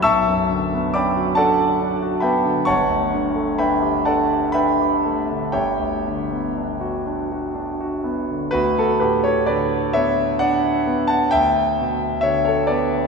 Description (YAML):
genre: classical, impressionist solo piano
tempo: 39-46 BPM (dotted quarters)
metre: 6/8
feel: rubato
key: D major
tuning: A4 = 440 Hz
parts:
  - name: clear concert grand piano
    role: solo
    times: 0.0-13.1 s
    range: G1 to E6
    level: -17 LUFS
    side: equal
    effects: none
room: wet cathedral reverb, RT60 4.8 s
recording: recorded in a church or concert hall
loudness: -17 LUFS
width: side -4 dB against mid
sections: 0.0-8.6 A section; 8.6-13.1 B section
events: none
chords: 0.0 Bmadd9; 2.7 Gadd9; 5.6 Gmaj7; 8.6 D6; 11.3 Dsus2